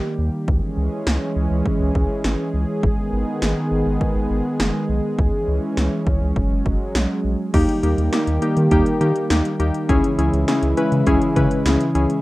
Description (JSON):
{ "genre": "synth-pop", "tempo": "102 BPM", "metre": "4/4", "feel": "straight", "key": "unclear", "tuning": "A4 = 440 Hz", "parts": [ { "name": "warm analog pad", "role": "sustained chords", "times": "0.0-12.2 s", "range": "C#3 to G#4", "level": "-22 LUFS", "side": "right 1 dB", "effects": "chorus" }, { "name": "round analog bass", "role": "bass", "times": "0.2-12.1 s", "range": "F#1 to D#3", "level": "-21 LUFS", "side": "equal", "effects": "none" }, { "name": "80s electronic pad drums", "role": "drums", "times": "0.5-12.2 s", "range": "crash cymbal, hi-hat, kick drum, snare drum", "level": "-23 LUFS", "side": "equal", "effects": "vintage 12-bit sampler grit" }, { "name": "warbly dusty pluck", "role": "accompaniment", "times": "7.5-12.2 s", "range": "A#3 to B4", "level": "-19 LUFS", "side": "left 2 dB", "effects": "chorus" } ], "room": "light reverb", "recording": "rough home demo mix", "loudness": "-17 LUFS", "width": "side -18 dB against mid", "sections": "0.0-7.5 A section; 7.5-12.2 B section", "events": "none", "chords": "0.5 C#m; 2.8 G#m; 5.2 C#m; 6.4 F#sus2; 7.5 D#; 9.9 C#m" }